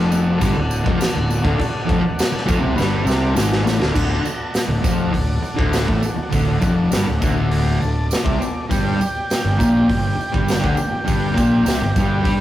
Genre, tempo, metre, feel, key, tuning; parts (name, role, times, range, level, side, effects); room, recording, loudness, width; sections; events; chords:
garage rock duo or trio; 101 BPM; 4/4; straight; D mixolydian; A4 = 442 Hz
overdriven combo organ; sustained chords; 0.0-12.4 s; G4 to D6; -27 LUFS; equal
fuzz guitar; riff; 0.0-12.4 s; D2 to G4; -20 LUFS; left 1 dB; distortion
fuzz fingered electric bass; bass; 0.0-12.4 s; D1 to G2; -22 LUFS; equal; overdrive
tambourine; percussion; 0.1-12.3 s; -35 LUFS; right 5 dB
raw garage drum kit; drums; 0.4-12.4 s; crash cymbal, hi-hat, kick drum, snare drum; -22 LUFS; equal
moderate studio reverb, RT60 0.5 s; rough rehearsal-room recording, warm saturation; -16 LUFS; side -13 dB against mid
0.0-4.0 A section; 4.0-12.4 B section
drum fill 2.8-4.0; transistor combo organ fill 6.9-8.7
0.0 D; 8.7 G5